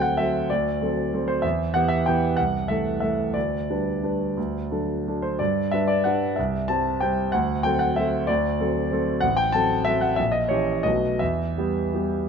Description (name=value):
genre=classical, piano waltz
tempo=159-199 BPM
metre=3/4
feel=rubato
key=E minor from 9.2 s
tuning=A4 = 440 Hz
part: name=clear concert grand piano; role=solo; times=0.0-12.3 s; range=A1 to A5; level=-21 LUFS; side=equal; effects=none
room=moderate concert hall reverb, RT60 2.3 s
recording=close, detailed microphones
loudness=-21 LUFS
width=side -6 dB against mid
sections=0.0-12.3 A section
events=none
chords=0.0 D7; 1.4 Em; 2.4 Am/C; 3.4 G/D; 4.4 D; 5.4 G; 6.4 C; 7.3 D7; 9.2 F#dim/A; 10.2 A#dim7; 10.8 B7; 11.2 Em